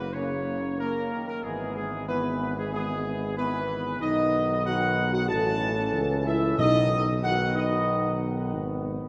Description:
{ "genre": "classical", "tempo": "93 BPM", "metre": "4/4", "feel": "straight", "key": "B major", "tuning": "A4 = 439 Hz", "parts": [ { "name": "warm trumpet section", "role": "melody", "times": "0.0-8.2 s", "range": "G#4 to A5", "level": "-31 LUFS", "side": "equal", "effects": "none" }, { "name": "mellow French horn section", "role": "sustained chords", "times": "0.0-8.2 s", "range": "G#3 to A4", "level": "-33 LUFS", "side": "equal", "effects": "none" }, { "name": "mellow tuba", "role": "bass", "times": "0.0-9.0 s", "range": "F#1 to C#2", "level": "-33 LUFS", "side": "equal", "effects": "none" }, { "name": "warm trombone section", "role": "sustained chords", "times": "0.1-9.1 s", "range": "C#3 to C#4", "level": "-36 LUFS", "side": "equal", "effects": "none" }, { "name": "timpani", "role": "percussion", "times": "6.6-7.5 s", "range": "B2", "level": "-36 LUFS", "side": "equal", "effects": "none" } ], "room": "wet church reverb, RT60 3.5 s", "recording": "nothing above 10.6 kHz", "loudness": "-27 LUFS", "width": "mono", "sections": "0.0-9.1 A section", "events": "none", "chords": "0.0 F#; 1.4 E/G#; 4.0 B; 5.3 A; 6.6 B", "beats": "0.14 0.79 | 1.44 2.09 2.73 3.37 | 4.01 4.66 5.30 5.94 | 6.59 7.24 7.89 8.54" }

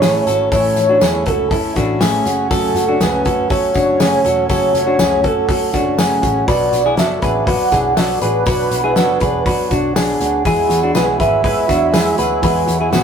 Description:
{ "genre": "jangly indie pop", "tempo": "121 BPM", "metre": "4/4", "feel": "straight", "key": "E mixolydian", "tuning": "A4 = 440 Hz", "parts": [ { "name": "warm velvety synth lead", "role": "melody", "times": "0.0-13.0 s", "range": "G#4 to F#5", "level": "-17 LUFS", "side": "right 1 dB", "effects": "chorus" }, { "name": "fingerpicked steel-string acoustic guitar", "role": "accompaniment", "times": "0.0-13.0 s", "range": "F#2 to A4", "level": "-21 LUFS", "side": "right 6 dB", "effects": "none" }, { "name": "accordion", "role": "sustained chords", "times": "0.0-13.0 s", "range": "F#3 to E4", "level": "-29 LUFS", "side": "equal", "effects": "none" }, { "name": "clean electric guitar", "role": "arpeggios", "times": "0.0-13.0 s", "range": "B3 to B4", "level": "-18 LUFS", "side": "left 4 dB", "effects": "none" }, { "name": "vintage muted picked electric bass", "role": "bass", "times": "0.0-13.0 s", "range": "E1 to F#2", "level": "-25 LUFS", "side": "left 1 dB", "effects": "none" }, { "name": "loose indie drum kit", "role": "drums", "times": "0.0-13.0 s", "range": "hi-hat, kick drum, snare drum", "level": "-20 LUFS", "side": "left 1 dB", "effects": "none" }, { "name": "tambourine", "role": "percussion", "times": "0.0-13.0 s", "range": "none", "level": "-32 LUFS", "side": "left 2 dB", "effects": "none" } ], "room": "wet studio reverb, RT60 0.6 s", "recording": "rough rehearsal-room recording", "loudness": "-13 LUFS", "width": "side -7 dB against mid", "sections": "0.0-13.0 A section", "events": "none", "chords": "0.0 A; 2.3 F#m; 6.5 Bm; 10.5 Eadd9", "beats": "0.02 | 0.52 1.02 1.51 2.01 | 2.51 3.01 3.50 4.00 | 4.50 5.00 5.49 5.99 | 6.49 6.98 7.48 7.97 | 8.47 8.96 9.46 9.96 | 10.45 10.95 11.44 11.94 | 12.43 12.93" }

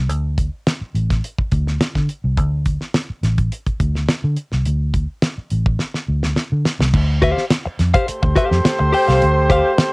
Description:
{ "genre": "funk", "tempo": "105 BPM", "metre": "4/4", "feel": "straight", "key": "D minor", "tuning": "A4 = 440 Hz", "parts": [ { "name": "vintage muted fingered electric bass", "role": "bass", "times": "0.0-9.6 s", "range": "A1 to D3", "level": "-18 LUFS", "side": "equal", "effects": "none" }, { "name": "damped 70s drum kit", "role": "drums", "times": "0.1-9.9 s", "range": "crash cymbal, hi-hat, kick drum, snare drum", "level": "-19 LUFS", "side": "equal", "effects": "cassette tape" }, { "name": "direct-recorded clean electric guitar", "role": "accompaniment", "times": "7.2-9.8 s", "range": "G4 to G5", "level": "-17 LUFS", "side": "left 2 dB", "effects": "cassette tape" }, { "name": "clear horn section", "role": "second line", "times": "8.1-9.9 s", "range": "A3 to C5", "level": "-18 LUFS", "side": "right 1 dB", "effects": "cassette tape" } ], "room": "little or no reverb", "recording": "home recording on cassette", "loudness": "-16 LUFS", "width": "side -26 dB against mid", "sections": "0.0-6.9 A section; 6.9-9.9 B section", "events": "drum fill 5.8-6.9", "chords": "0.0 D5; 6.9 Dm11", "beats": "| 0.09 0.66 1.23 1.80 | 2.37 2.94 3.52 4.09 | 4.66 5.23 5.80 6.37 | 6.94 7.51 8.08 8.64 | 9.21 9.78" }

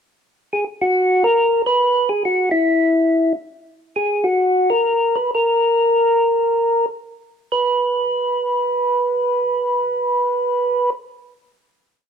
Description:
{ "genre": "jazz", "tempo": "97-139 BPM", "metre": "4/4", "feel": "swing 65% on 8ths", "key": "unclear", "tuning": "A4 = 437 Hz", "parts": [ { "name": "percussive tonewheel organ", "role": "solo", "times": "0.5-10.9 s", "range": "E4 to B4", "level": "-16 LUFS", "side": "equal", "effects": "slow rotary speaker" } ], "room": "moderate large studio reverb, RT60 1.1 s", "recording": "band playing live in one room", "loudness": "-16 LUFS", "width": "side -7 dB against mid", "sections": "0.1-7.5 A section; 7.5-12.1 final note", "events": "slowing down 3.5-7.5", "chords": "none", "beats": "| 0.05 0.48 0.92 1.35 | 1.78 2.21 2.64 3.08 | 3.51 3.94 4.39 4.84 | 5.32 5.81 6.33 6.88 | 7.48 8.10 8.72 9.34 | 9.96 10.58" }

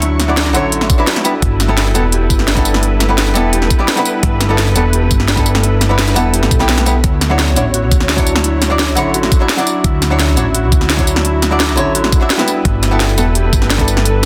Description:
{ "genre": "liquid drum and bass", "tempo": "171 BPM", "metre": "4/4", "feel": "straight", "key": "D major", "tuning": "A4 = 440 Hz", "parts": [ { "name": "archtop guitar, miked and amplified", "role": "accompaniment", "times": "0.0-14.3 s", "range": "D3 to E5", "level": "-20 LUFS", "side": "equal", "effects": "tape echo" }, { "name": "muted studio string section", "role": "sustained chords", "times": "0.0-14.3 s", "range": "E4 to C#6", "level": "-25 LUFS", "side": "equal", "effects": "sidechain pumping" }, { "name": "Celtic harp", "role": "arpeggios", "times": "0.0-14.3 s", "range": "B3 to B4", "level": "-24 LUFS", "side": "equal", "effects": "delay" }, { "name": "upright bass", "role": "bass", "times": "0.0-14.3 s", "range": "E1 to D2", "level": "-18 LUFS", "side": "equal", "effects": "none" }, { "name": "drum and bass drum kit", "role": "drums", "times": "0.0-14.3 s", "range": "hi-hat, snare drum, tambourine", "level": "-19 LUFS", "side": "equal", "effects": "none" }, { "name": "electronic kick drum", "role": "drums", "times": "0.9-13.9 s", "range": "none", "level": "-16 LUFS", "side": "equal", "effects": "none" } ], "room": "light reverb, digital ambience", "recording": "dense, heavily limited modern master", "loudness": "-13 LUFS", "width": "mono", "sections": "0.0-14.3 A section", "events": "none", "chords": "0.0 Dmaj9; 1.2 G69; 7.0 Dmaj9; 12.5 G69", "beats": "| 0.02 0.37 0.72 1.07 | 1.42 1.77 2.12 2.48 | 2.83 3.18 3.53 3.88 | 4.23 4.58 4.93 5.28 | 5.63 5.99 6.34 6.69 | 7.04 7.39 7.74 8.09 | 8.44 8.79 9.14 9.49 | 9.85 10.20 10.55 10.90 | 11.25 11.60 11.95 12.30 | 12.65 13.00 13.35 13.70 | 14.05" }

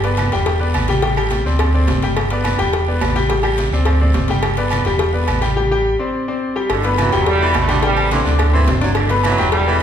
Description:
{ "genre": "latin, salsa", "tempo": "212 BPM", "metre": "4/4", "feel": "straight", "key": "G major", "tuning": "A4 = 440 Hz", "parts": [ { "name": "bright concert grand piano", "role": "accompaniment", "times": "0.0-9.8 s", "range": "G3 to D6", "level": "-19 LUFS", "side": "left 2 dB", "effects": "none" }, { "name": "fingered electric bass", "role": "bass", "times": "0.0-9.8 s", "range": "E1 to D2", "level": "-18 LUFS", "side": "equal", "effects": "none" }, { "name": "agogo bells and timbales", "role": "percussion", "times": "0.0-9.7 s", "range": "none", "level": "-26 LUFS", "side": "right 4 dB", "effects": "none" }, { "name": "congas", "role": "percussion", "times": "0.0-9.8 s", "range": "none", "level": "-26 LUFS", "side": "equal", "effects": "none" }, { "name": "cowbell", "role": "percussion", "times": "0.0-9.8 s", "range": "none", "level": "-26 LUFS", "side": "left 5 dB", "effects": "none" }, { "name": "claves", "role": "percussion", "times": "0.2-9.4 s", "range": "none", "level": "-33 LUFS", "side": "right 3 dB", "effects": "none" }, { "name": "guiro", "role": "percussion", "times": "0.2-9.8 s", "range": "none", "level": "-33 LUFS", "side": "right 4 dB", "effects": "none" }, { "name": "bright trombone section", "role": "melody", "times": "6.7-9.8 s", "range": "G2 to A3", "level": "-20 LUFS", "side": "right 2 dB", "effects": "none" }, { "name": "bright baritone saxophone", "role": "second line", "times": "7.0-9.8 s", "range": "D3 to F#3", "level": "-23 LUFS", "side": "right 4 dB", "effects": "none" } ], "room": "wet recital hall reverb, RT60 1.5 s", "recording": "recorded in a church or concert hall", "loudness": "-14 LUFS", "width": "side -9 dB against mid", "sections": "0.0-6.7 A section; 6.7-9.8 B section", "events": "none", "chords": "0.5 Em7; 1.0 Am7; 1.6 D7sus4; 2.2 G; 2.7 Em7; 3.3 Am7; 3.9 D7sus4; 4.4 G; 5.0 Em7; 5.6 Am7; 6.1 D7sus4; 6.7 Gadd9; 7.3 Em7; 7.8 Am7; 8.4 D7sus4; 9.0 Gadd9", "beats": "0.19 0.47 0.76 | 1.04 1.32 1.60 1.89 | 2.17 2.46 2.74 3.02 | 3.31 3.59 3.87 4.15 | 4.44 4.72 5.00 5.29 | 5.57 5.85 6.14 6.42 | 6.70 6.99 7.27 7.55 | 7.83 8.12 8.40 8.68 | 8.96 9.25 9.53 9.81" }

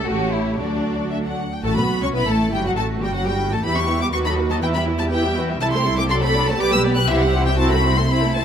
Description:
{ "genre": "quick classical-period movement for string orchestra", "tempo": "120 BPM", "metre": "2/4", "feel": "straight", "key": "unclear", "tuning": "A4 = 440 Hz", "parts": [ { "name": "rich chamber violin section", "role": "second line", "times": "0.0-8.4 s", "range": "C4 to E5", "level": "-27 LUFS", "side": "left 4 dB", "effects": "none" }, { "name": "rich symphonic viola section", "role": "accompaniment", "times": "0.0-8.4 s", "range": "D#3 to B4", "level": "-24 LUFS", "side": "right 1 dB", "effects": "none" }, { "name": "rich chamber cello section", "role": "bass", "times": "0.0-8.4 s", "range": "F#3 to A4", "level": "-26 LUFS", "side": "right 3 dB", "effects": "none" }, { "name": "warm chamber double bass section", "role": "bass", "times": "0.0-8.4 s", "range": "F#1 to E2", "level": "-22 LUFS", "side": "right 1 dB", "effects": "none" }, { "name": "rich chamber violin section", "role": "melody", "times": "0.1-8.4 s", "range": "C#5 to F#6", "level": "-24 LUFS", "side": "left 3 dB", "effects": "none" } ], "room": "moderate scoring stage reverb, RT60 2.0 s", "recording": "none", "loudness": "-17 LUFS", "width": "side -8 dB against mid", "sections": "0.0-1.6 A section; 1.6-8.4 B section", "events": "none", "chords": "0.1 A7; 0.6 D; 1.6 A69; 2.1 A5; 2.6 F#m; 3.6 Em; 4.1 B7/D#; 4.6 Em; 5.6 Am7/C; 6.1 D7/C; 6.6 G/B; 7.1 C; 7.6 Am/C", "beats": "0.08 | 0.59 1.11 | 1.64 2.14 | 2.64 3.14 | 3.64 4.13 | 4.62 5.12 | 5.61 6.10 | 6.59 7.09 | 7.59 8.10" }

